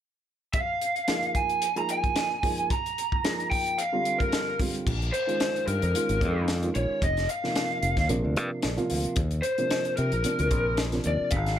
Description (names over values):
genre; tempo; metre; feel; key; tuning
electric jazz fusion; 111 BPM; 4/4; swing 55% on 16ths; unclear; A4 = 440 Hz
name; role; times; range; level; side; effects
lead guitar through a small cranked amp; melody; 0.5-11.6 s; Bb4 to Bb5; -28 LUFS; equal; overdrive
crisp fusion drum kit; drums; 0.5-11.6 s; crash cymbal, hi-hat, kick drum, snare drum; -30 LUFS; left 1 dB; none
dark baby grand piano; accompaniment; 1.1-11.3 s; C3 to F5; -32 LUFS; right 2 dB; none
fingered electric bass; bass; 4.9-11.6 s; F1 to C3; -27 LUFS; equal; none
room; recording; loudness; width
light reverb, small room ambience; none; -24 LUFS; side -10 dB against mid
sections
0.5-4.9 A section; 4.9-11.6 B section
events
grand piano fill 8.4-9.2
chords
0.5 Bb7sus4; 3.8 Bb69/D; 4.9 Bbm11; 7.0 F7sus4; 8.1 Bbadd9; 9.2 Ebsus2